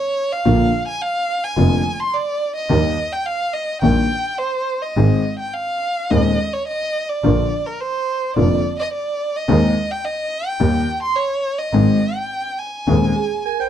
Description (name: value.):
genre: tango.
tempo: 106 BPM.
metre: 4/4.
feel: rubato.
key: Ab major.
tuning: A4 = 441 Hz.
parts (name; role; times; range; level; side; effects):
warm violin; second line; 0.0-13.7 s; Bb4 to C6; -22 LUFS; right 1 dB; none.
dark baby grand piano; accompaniment; 0.5-13.1 s; Eb1 to Ab4; -17 LUFS; left 3 dB; none.
clear double bass; bass; 0.5-13.1 s; F1 to Eb2; -19 LUFS; right 2 dB; none.
vibraphone with soft mallets; second line; 13.2-13.7 s; Ab4 to C5; -22 LUFS; right 12 dB; none.
bandoneon; melody; 13.5-13.7 s; G5 to Ab5; -22 LUFS; right 9 dB; none.
room: moderate club reverb, RT60 0.6 s.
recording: dark, warm production.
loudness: -17 LUFS.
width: side -10 dB against mid.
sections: 0.0-13.7 A section.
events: violin solo 0.0-13.7.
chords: 0.5 Bb; 2.7 Eb; 5.0 Ab; 7.2 Bb; 9.5 Ab/Eb; 10.6 Eb; 11.7 Ab.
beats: | 0.45 1.01 1.57 2.13 | 2.70 3.26 3.82 4.39 | 4.96 5.54 6.11 6.67 | 7.24 7.80 8.36 8.92 | 9.48 10.04 10.60 11.16 | 11.73 12.30 12.87 13.45.